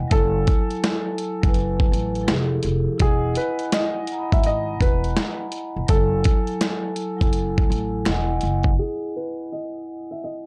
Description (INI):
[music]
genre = lo-fi hip hop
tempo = 83 BPM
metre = 4/4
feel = swing 63% on 16ths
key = E major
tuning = A4 = 440 Hz
[part]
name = vibraphone with soft mallets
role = accompaniment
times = 0.0-10.5 s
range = F3 to B5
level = -29 LUFS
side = equal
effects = low-pass filter
[part]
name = upright bass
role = bass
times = 0.0-8.8 s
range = E1 to A1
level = -27 LUFS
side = equal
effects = none
[part]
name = felt-muted upright piano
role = melody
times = 0.1-10.5 s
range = G#4 to E5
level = -30 LUFS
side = equal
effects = low-pass filter
[part]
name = dusty soul sampler-style drum kit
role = drums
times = 0.1-8.8 s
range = hi-hat, kick drum, snare drum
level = -23 LUFS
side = equal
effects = vintage 12-bit sampler grit
[part]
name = finger snaps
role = percussion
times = 0.8-8.3 s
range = none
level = -38 LUFS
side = equal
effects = none
[sound]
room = little or no reverb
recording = dry, gritty hardware recording, low-pass filter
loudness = -22 LUFS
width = mono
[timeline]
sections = 0.0-8.8 A section; 8.8-10.5 B section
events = filter sweep 8.8-10.5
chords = 0.1 F#m9; 2.3 Fmaj9; 3.0 Emaj9; 5.9 F#m9; 8.1 Emaj9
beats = | 0.11 0.83 1.55 2.28 | 3.00 3.72 4.45 5.17 | 5.89 6.61 7.34 8.06 | 8.78 9.51 10.23